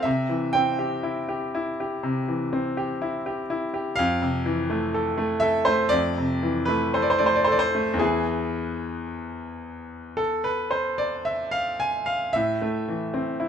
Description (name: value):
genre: classical, romantic nocturne for solo piano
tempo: 54-64 BPM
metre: 4/4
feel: rubato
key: unclear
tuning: A4 = 441 Hz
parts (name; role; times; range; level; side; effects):
- bright grand piano; solo; 0.0-13.5 s; E2 to G#5; -23 LUFS; equal; none
room: moderate recital hall reverb, RT60 1.6 s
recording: close, detailed microphones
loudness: -22 LUFS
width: side -8 dB against mid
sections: 0.0-13.5 A section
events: none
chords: 0.1 C; 4.0 Fmaj7; 8.0 E; 12.3 Am